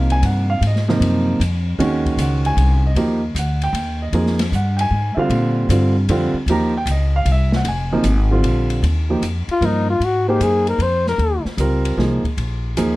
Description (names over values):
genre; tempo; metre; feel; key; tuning
jazz, small-group swing and bop; 153 BPM; 3/4; swing 67% on 8ths; Eb mixolydian; A4 = 440 Hz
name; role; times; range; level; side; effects
warm grand piano; accompaniment; 0.0-13.0 s; C3 to Bb5; -20 LUFS; right 1 dB; none
upright bass; bass; 0.0-13.0 s; F1 to Bb2; -18 LUFS; equal; none
open jazz drum kit; drums; 0.1-12.9 s; hi-hat, kick drum, ride cymbal, snare drum; -29 LUFS; left 1 dB; none
trumpet with bucket mute; melody; 9.5-11.4 s; Eb4 to C5; -18 LUFS; left 3 dB; none
room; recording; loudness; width
light reverb; dark, warm production; -16 LUFS; side -19 dB against mid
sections
0.0-8.8 A section; 8.8-13.0 B section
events
none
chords
0.0 Ab7; 3.0 Eb; 4.1 Fm7; 5.3 Bb; 6.5 Eb7; 7.3 C; 7.7 Fm7; 8.4 Bb; 8.8 Eb; 10.0 Ab7; 11.2 Eb7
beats
0.23 | 0.62 1.01 1.40 | 1.79 2.18 2.57 | 2.96 3.35 3.75 | 4.14 4.53 4.92 | 5.31 5.70 6.09 | 6.48 6.88 7.27 | 7.66 8.05 8.44 | 8.84 9.23 9.62 | 10.01 10.41 10.80 | 11.20 11.59 11.98 | 12.38 12.77